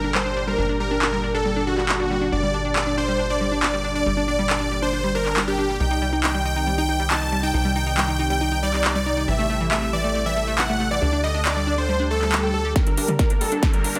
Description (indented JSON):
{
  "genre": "uplifting trance",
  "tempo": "138 BPM",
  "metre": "4/4",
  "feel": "straight",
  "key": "G minor",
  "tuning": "A4 = 439 Hz",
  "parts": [
    { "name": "supersaw chords", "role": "melody", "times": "0.0-14.0 s", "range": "F#4 to A5", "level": "-26 LUFS", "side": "equal", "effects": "sidechain pumping, low-pass filter, digital delay" },
    { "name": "analog string pad", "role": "sustained chords", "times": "0.0-14.0 s", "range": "Bb2 to Bb4", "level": "-33 LUFS", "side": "equal", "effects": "ensemble chorus, sidechain pumping" },
    { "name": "analog pluck", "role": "arpeggios", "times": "0.0-14.0 s", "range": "E3 to G5", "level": "-29 LUFS", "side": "equal", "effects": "chorus, sidechain pumping, digital delay" },
    { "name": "tight sequencer bass", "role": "bass", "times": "0.0-14.0 s", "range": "G1 to G2", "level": "-29 LUFS", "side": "equal", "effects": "sidechain pumping, high-pass filter" },
    { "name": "big-room dance drum kit", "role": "drums", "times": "0.1-14.0 s", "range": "handclaps, hi-hat, snare drum, toms", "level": "-27 LUFS", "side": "equal", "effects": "low-pass filter on snare, studio reverb, sidechain pumping on hats, low-pass filter on hats, sidechain pumping on toms, low-pass filter on toms" },
    { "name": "swell and riser", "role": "sound effects", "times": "12.0-14.0 s", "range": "none", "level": "-35 LUFS", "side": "equal", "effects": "none" },
    { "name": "electronic kick drum", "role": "drums", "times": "12.8-13.7 s", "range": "none", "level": "-22 LUFS", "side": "equal", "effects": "studio reverb" }
  ],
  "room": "light reverb",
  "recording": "none",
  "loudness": "-22 LUFS",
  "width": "mono",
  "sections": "0.0-12.8 A section; 12.8-14.0 B section",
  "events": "swell 12.0-12.8; build-up 12.8-14.0; drum fill 12.8-14.0",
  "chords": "0.0 Gm; 5.8 Cm; 9.3 Am7; 11.0 Dsus4; 12.8 Gm"
}